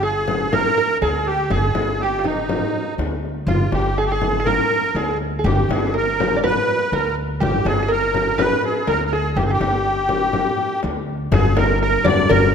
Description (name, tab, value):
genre	Arabic maqam ensemble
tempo	122 BPM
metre	4/4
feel	straight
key	G maqam saba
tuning	A4 = 437 Hz
part	musette accordion	melody	0.0-12.5 s	Eb4 to D5	-21 LUFS	right 1 dB	none
part	open-back banjo	second line	0.0-12.5 s	Eb4 to D5	-25 LUFS	right 3 dB	none
part	upright bass	bass	0.0-12.5 s	G1 to D2	-23 LUFS	equal	none
part	frame drum	percussion	0.3-12.4 s	none	-23 LUFS	left 3 dB	none
part	rich symphonic cello section	drone	11.3-12.5 s	G2	-27 LUFS	left 4 dB	none
part	darbuka	percussion	11.3-12.5 s	none	-25 LUFS	left 4 dB	none
room	moderate concert hall reverb, RT60 1.7 s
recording	none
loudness	-17 LUFS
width	side -7 dB against mid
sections	0.0-11.3 A section; 11.3-12.5 B section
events	none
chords	none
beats	0.03 0.52 1.01 | 1.51 2.00 2.49 2.98 | 3.48 3.97 4.46 4.95 | 5.44 5.93 6.42 6.92 | 7.41 7.90 8.39 8.88 | 9.37 9.86 10.35 10.84 | 11.32 11.81 12.30